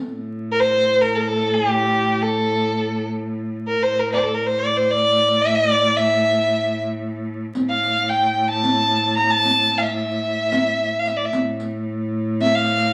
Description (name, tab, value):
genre	Turkish makam ensemble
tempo	223 BPM (eighths)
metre	7/8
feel	straight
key	A makam kurdi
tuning	A4 = 440 Hz
part	clear cello	drone	0.1-12.9 s	A2	-27 LUFS	equal	none
part	clear violin	melody	0.5-12.9 s	G4 to Bb5	-20 LUFS	equal	none
part	riq	percussion	7.5-12.5 s	none	-28 LUFS	equal	none
room	wet large studio reverb, RT60 0.9 s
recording	vinyl crackle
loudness	-20 LUFS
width	mono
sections	0.1-12.9 A section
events	none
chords	none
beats	| 0.06 0.33 0.59 0.86 1.13 1.40 1.66 | 1.93 2.20 2.47 2.74 3.00 3.27 3.54 | 3.81 4.08 4.34 4.61 4.88 5.15 5.42 | 5.69 5.96 6.23 6.49 6.76 7.03 7.30 | 7.57 7.84 8.11 8.38 8.64 8.91 9.18 | 9.45 9.72 9.99 10.26 10.53 10.79 11.06 | 11.33 11.60 11.87 12.14 12.41 12.68